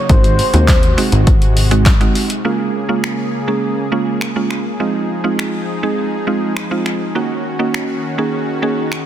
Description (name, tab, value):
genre	dance-pop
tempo	102 BPM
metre	4/4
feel	straight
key	Bb minor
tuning	A4 = 440 Hz
part	mellow horn-like synth lead	melody	0.0-1.8 s	C5	-20 LUFS	left 1 dB	chorus, phaser, tape echo
part	soft supersaw	sustained chords	0.0-9.1 s	C3 to Ab4	-23 LUFS	left 1 dB	sidechain pumping
part	mallet-like synth pluck	accompaniment	0.1-8.9 s	Ab3 to Ab4	-18 LUFS	right 3 dB	chorus, sidechain pumping
part	plucky analog bass	bass	0.1-2.1 s	Ab1 to Eb2	-14 LUFS	equal	sidechain pumping
part	punchy analog drum machine	drums	0.1-9.1 s	finger snaps, handclaps, hi-hat, kick drum, snare drum	-15 LUFS	equal	soft clipping on snare
room	light reverb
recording	dense, heavily limited modern master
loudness	-14 LUFS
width	side -11 dB against mid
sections	0.0-2.4 A section; 2.4-9.1 B section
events	none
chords	0.1 Ab7; 2.4 Bbm7; 4.8 Fm7; 7.2 Ebm7